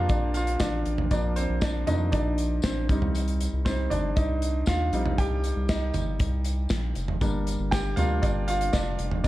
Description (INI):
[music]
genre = piano-driven pop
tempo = 118 BPM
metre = 4/4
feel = straight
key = unclear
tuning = A4 = 445 Hz
[part]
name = clear concert grand piano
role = accompaniment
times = 0.0-9.3 s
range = F3 to G5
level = -28 LUFS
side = equal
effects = none
[part]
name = round analog bass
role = bass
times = 0.0-9.3 s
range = F1 to F2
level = -28 LUFS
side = equal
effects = none
[part]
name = modern studio drum kit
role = drums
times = 0.1-9.3 s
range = hi-hat, kick drum, snare drum, toms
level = -28 LUFS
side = equal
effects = none
[part]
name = tambourine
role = percussion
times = 0.1-9.3 s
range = none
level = -45 LUFS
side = left 5 dB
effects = none
[sound]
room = light reverb, small room ambience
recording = dark, warm production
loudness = -24 LUFS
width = side -16 dB against mid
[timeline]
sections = 0.0-9.3 A section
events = grand piano solo 0.0-9.3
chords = 0.0 Bb; 2.9 Cm